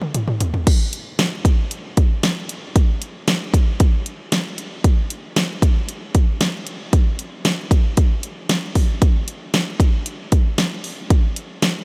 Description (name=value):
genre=pop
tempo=115 BPM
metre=4/4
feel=straight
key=none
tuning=none
part: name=pop drum kit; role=drums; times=0.0-11.7 s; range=crash cymbal, hi-hat, kick drum, snare drum, toms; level=-20 LUFS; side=equal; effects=none
room=light reverb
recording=none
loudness=-19 LUFS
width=mono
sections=0.7-11.8 A section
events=drum fill 0.0-0.7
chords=none